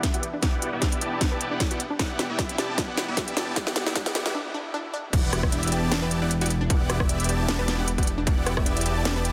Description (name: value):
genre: future bass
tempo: 153 BPM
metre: 4/4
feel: swing 54% on 16ths, half-time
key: E minor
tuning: A4 = 442 Hz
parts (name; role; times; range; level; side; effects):
- dark concert grand piano; accompaniment; 0.0-5.0 s; E3 to E5; -45 LUFS; equal; none
- dense compressed supersaw; riff; 0.0-9.3 s; B3 to A5; -32 LUFS; equal; sidechain pumping, low-pass filter, tape echo
- electronic kick drum; drums; 0.0-8.6 s; none; -28 LUFS; equal; none
- trap drum kit; drums; 0.0-9.3 s; crash cymbal, hi-hat, rim click, snare drum; -31 LUFS; equal; none
- riser, swell and impact; sound effects; 2.7-6.7 s; none; -45 LUFS; equal; none
- unison pluck; arpeggios; 0.1-9.2 s; D4 to B4; -38 LUFS; equal; none
- fat analog bass; bass; 5.1-9.3 s; E1; -29 LUFS; equal; sidechain pumping
room: light reverb, digital ambience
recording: dense, heavily limited modern master, high-pass filter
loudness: -25 LUFS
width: mono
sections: 0.0-5.1 A section; 5.1-9.3 B section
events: build-up 0.0-5.1; drum fill 0.0-4.3; filter sweep on supersaw synth 0.0-5.1; break 4.3-5.1; swell 4.3-5.1; drop 5.1-9.3; impact 5.1-6.7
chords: 0.0 Em9; 4.9 N.C.; 5.1 Em9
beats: 0.03 | 0.43 0.82 1.21 1.60 | 2.00 2.39 2.78 3.17 | 3.56 3.96 4.35 4.74 | 5.13 5.52 5.92 6.31 | 6.70 7.09 7.49 7.88 | 8.27 8.66 9.05